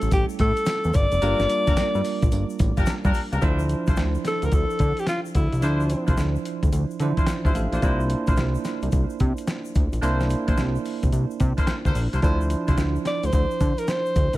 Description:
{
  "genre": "R&B, new jack swing",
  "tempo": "109 BPM",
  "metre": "4/4",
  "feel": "swing 65% on 16ths",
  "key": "D minor from 3.4 s",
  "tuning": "A4 = 437 Hz",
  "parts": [
    { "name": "clear alto saxophone", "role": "melody", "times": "0.0-6.1, 13.1-14.4 s", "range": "D4 to D5", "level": "-25 LUFS", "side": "left 1 dB", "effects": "none" },
    { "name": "bell-like tine electric piano", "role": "accompaniment", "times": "0.0-14.4 s", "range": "E3 to F5", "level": "-28 LUFS", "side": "moving between right 1 dB and right 8 dB", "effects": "auto-pan" },
    { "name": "fat analog bass", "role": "bass", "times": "0.0-14.4 s", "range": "F1 to D3", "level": "-24 LUFS", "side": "equal", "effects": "none" },
    { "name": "dusty soul sampler-style drum kit", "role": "drums", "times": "0.0-14.4 s", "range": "hi-hat, kick drum, snare drum, tambourine", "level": "-24 LUFS", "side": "equal", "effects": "none" },
    { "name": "egg shaker", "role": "percussion", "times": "0.0-14.4 s", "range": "none", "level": "-48 LUFS", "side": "left 7 dB", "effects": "none" },
    { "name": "warm horn section", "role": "stabs", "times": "1.2-12.8 s", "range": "D4 to C5", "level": "-32 LUFS", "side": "left 2 dB", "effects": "ping-pong delay" }
  ],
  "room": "small room ambience",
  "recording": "none",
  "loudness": "-20 LUFS",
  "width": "side -17 dB against mid",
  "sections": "0.0-3.4 A section; 3.4-14.4 B section",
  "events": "none",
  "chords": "0.0 A7; 1.2 Gm7; 3.4 Dm9; 7.8 C9; 12.2 Dm9"
}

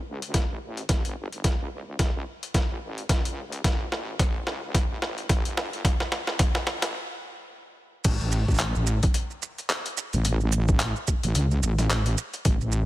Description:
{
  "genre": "glitch hop",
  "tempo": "109 BPM",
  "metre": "4/4",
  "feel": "swing 58% on 16ths",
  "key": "unclear",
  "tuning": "A4 = 440 Hz",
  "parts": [
    { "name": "wobble bass", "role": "bass", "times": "0.0-12.9 s", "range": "G1 to C#2", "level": "-28 LUFS", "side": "equal", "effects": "chorus, tube saturation, high-pass filter" },
    { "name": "boom bap sampler-style drum kit", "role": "drums", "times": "0.2-12.8 s", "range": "crash cymbal, handclaps, hi-hat, shaker, snare drum", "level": "-29 LUFS", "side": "equal", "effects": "overdrive, high-pass filter on hats, high-pass filter on snare, high-pass filter on cymbals, high-pass filter on perc, high-pass filter on room" },
    { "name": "electronic kick drum", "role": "drums", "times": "0.3-12.6 s", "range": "none", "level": "-24 LUFS", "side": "equal", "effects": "overdrive" }
  ],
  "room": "little or no reverb",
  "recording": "none",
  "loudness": "-24 LUFS",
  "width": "side -16 dB against mid",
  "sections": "0.0-8.0 A section; 8.0-12.9 B section",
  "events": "build-up 0.0-8.0; drum fill 0.0-6.9; stop 6.9-8.0; drop 8.0-12.9",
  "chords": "none"
}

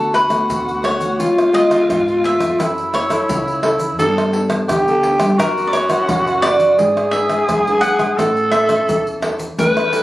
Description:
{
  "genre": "samba and choro",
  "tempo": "86 BPM",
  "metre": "4/4",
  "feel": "straight",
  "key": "unclear",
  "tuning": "A4 = 440 Hz",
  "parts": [
    { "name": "cavaquinho", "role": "melody", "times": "0.0-9.9 s", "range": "A4 to F#5", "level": "-18 LUFS", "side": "equal", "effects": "none" },
    { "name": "growling tenor saxophone", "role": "second line", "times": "0.0-10.0 s", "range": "E4 to B4", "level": "-17 LUFS", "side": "equal", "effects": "none" },
    { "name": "nylon-string guitar", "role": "accompaniment", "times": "0.0-10.0 s", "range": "G#2 to B4", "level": "-24 LUFS", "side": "left 2 dB", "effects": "none" },
    { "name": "upright bass", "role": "bass", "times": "0.0-10.0 s", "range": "G#1 to G3", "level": "-25 LUFS", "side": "equal", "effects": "none" },
    { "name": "surdo, pandeiro, tamborim and egg shaker", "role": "percussion", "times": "0.1-10.0 s", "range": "none", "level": "-23 LUFS", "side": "equal", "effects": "none" }
  ],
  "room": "moderate studio reverb, RT60 0.7 s",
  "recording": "recorded on a phone in the room, studio ambience",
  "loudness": "-14 LUFS",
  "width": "side -16 dB against mid",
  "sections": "0.0-10.0 A section",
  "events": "none",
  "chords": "0.0 D6; 1.2 C#7; 2.6 F#m7; 4.0 Gadd9; 5.4 F#7; 6.8 E7/G#; 8.2 A"
}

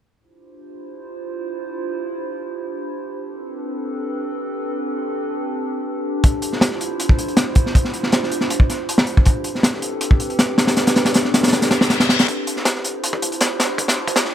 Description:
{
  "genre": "drum and bass, jungle",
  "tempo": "159 BPM",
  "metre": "4/4",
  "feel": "swing 53% on 16ths",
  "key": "D dorian",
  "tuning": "A4 = 437 Hz",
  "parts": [
    { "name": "warbly tape-like pad", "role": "sustained chords", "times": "0.7-14.3 s", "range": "C4 to C5", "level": "-24 LUFS", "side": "right 1 dB", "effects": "chorus, built-in reverb, vintage 12-bit sampler grit" },
    { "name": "crunchy breakbeat drum kit", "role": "drums", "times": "6.2-14.3 s", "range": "hi-hat, kick drum, snare drum", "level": "-16 LUFS", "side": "equal", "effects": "high-pass filter on kick, high-pass filter on hats, high-pass filter on snare, high-pass filter on room" },
    { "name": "reverse cymbal and riser", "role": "sound effects", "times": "11.7-14.3 s", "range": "none", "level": "-26 LUFS", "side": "left 4 dB", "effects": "none" }
  ],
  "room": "light reverb",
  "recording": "none",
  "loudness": "-17 LUFS",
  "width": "side -10 dB against mid",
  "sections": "0.2-12.3 A section; 12.3-14.3 B section",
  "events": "reverse cymbal 11.7-12.3; build-up 12.3-14.3",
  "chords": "0.2 Dm11; 3.2 Am11; 6.2 Dm11; 9.3 Am11; 12.3 Dm11"
}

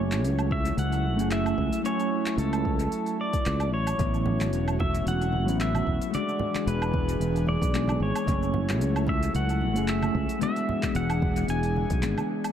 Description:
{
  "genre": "sunset chillout",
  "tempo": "112 BPM",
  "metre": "4/4",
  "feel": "swing 54% on 16ths",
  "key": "unclear",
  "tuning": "A4 = 440 Hz",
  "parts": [
    { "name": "pedal steel guitar", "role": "melody", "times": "0.0-12.3 s", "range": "A4 to G#5", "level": "-32 LUFS", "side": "left 1 dB", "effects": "dub echo" },
    { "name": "mellow electric guitar", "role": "accompaniment", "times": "0.0-12.5 s", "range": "F#3 to G#5", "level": "-30 LUFS", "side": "moving between left 6 dB and right 6 dB", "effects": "auto-pan, dub echo" },
    { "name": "airy breathy pad", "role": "sustained chords", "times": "0.0-12.5 s", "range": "E3 to G#4", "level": "-33 LUFS", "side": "equal", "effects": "chorus" },
    { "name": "sustaining fretless electric bass", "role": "bass", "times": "0.0-12.1 s", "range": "E1 to C#2", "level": "-27 LUFS", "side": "equal", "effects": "tube saturation" },
    { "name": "smooth R&B drum kit", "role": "drums", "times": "0.1-12.5 s", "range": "handclaps, hi-hat, shaker, woodblock", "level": "-37 LUFS", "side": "right 2 dB", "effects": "analog delay" },
    { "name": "electronic kick drum", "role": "drums", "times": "0.5-12.0 s", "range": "none", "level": "-30 LUFS", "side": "equal", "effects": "overdrive" },
    { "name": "congas", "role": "percussion", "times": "4.0-12.3 s", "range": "none", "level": "-35 LUFS", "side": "right 3 dB", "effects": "none" }
  ],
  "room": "light reverb, digital ambience",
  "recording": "echo-heavy mix",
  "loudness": "-24 LUFS",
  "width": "side -9 dB against mid",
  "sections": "0.0-12.5 A section",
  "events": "none",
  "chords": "0.0 F#m7; 4.0 A6; 6.1 E7; 8.3 F#m7; 10.4 E7"
}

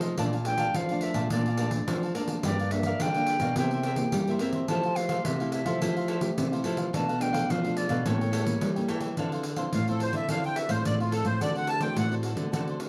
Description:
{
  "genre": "samba and choro",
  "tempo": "107 BPM",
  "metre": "4/4",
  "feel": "straight",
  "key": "A minor, D minor from 9.2 s",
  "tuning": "A4 = 441 Hz",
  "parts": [
    { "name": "cavaquinho", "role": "accompaniment", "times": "0.0-12.9 s", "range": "D4 to A5", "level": "-39 LUFS", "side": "equal", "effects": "none" },
    { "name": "nylon-string guitar", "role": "accompaniment", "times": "0.0-12.9 s", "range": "F2 to G4", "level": "-36 LUFS", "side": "equal", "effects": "none" },
    { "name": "nylon-string guitar", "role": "bass", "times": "0.0-12.8 s", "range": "G2 to C4", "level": "-32 LUFS", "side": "equal", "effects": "none" },
    { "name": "pandeiro", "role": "percussion", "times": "0.0-12.9 s", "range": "none", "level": "-35 LUFS", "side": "equal", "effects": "none" },
    { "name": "concert flute", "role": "second line", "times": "0.2-8.9 s", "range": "C#5 to A5", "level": "-34 LUFS", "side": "equal", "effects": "none" },
    { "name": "accordion", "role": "melody", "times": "9.7-12.1 s", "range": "F4 to A5", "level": "-33 LUFS", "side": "equal", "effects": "light tremolo tuning" }
  ],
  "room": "light reverb",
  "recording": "dry, close 1970s-style studio recording",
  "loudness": "-28 LUFS",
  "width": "mono",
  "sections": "0.0-9.2 A section; 9.2-12.9 B section",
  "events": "flute solo 0.0-9.2; accordion solo 9.2-12.9",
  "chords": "0.2 Bbmaj7; 2.4 Gm7; 3.6 C7; 4.7 Fmaj9; 6.9 Bm7b5; 8.1 A7b9; 9.2 Dm9; 11.4 D7"
}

